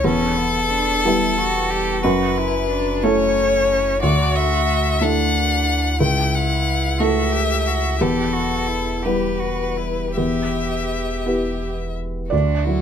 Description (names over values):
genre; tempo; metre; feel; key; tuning
neoclassical piano and strings; 52-61 BPM (dotted quarters); 6/8; rubato; E dorian; A4 = 438 Hz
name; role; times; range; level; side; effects
clear violin; melody; 0.0-12.8 s; F#4 to G5; -22 LUFS; left 4 dB; none
rich cello; second line; 0.0-12.8 s; B3 to G4; -26 LUFS; right 5 dB; none
felt-muted upright piano; accompaniment; 0.0-12.8 s; C#2 to D5; -21 LUFS; equal; none
warm sub bass; bass; 0.0-12.8 s; E1 to D2; -26 LUFS; right 1 dB; none
room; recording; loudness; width
light reverb; none; -17 LUFS; side -8 dB against mid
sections
0.0-12.3 A section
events
none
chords
0.0 Em; 2.0 F#m7; 4.0 Dadd9; 6.0 A/C#; 8.0 Em